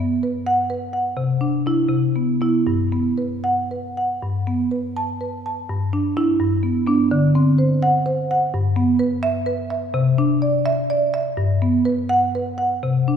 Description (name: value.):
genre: classical, contemporary piece for solo marimba.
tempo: 76-87 BPM (dotted quarters).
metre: 6/8.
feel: rubato.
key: G major.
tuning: A4 = 440 Hz.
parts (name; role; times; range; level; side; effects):
marimba with medium mallets; solo; 0.0-13.2 s; G2 to A5; -18 LUFS; equal; none.
room: wet scoring stage reverb, RT60 1.8 s.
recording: recorded in a church or concert hall.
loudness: -18 LUFS.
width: side -8 dB against mid.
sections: 0.0-4.2 A section; 4.2-13.2 A section.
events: none.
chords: 0.0 Gmaj7; 1.2 Cadd9; 1.9 Cmaj7; 2.7 Gmaj7; 4.2 Gadd9; 5.7 Em7/G; 6.4 Bm/G; 7.1 D7; 8.5 G6; 10.0 Cadd9; 11.4 Gmaj7.